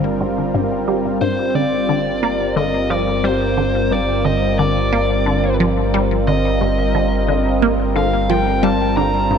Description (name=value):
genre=ambient, sequencer-driven space music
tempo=89 BPM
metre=4/4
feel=straight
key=G minor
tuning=A4 = 440 Hz
part: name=lush unison pad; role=sustained chords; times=0.0-9.4 s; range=G3 to Bb4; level=-19 LUFS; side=equal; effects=chorus
part: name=resonant blip pluck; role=riff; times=0.0-9.4 s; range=G2 to Bb3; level=-21 LUFS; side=equal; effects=phaser, ping-pong delay
part: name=analog drone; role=bass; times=0.0-9.4 s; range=G1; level=-23 LUFS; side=equal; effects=chorus
part: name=biting lead guitar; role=melody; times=1.2-9.4 s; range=C5 to Bb5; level=-21 LUFS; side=left 1 dB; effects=overdrive, ping-pong delay
room=moderate plate reverb, RT60 3.6 s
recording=dark, warm production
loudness=-15 LUFS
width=side -7 dB against mid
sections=0.0-1.2 A section; 1.2-9.4 B section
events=none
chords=0.0 Gm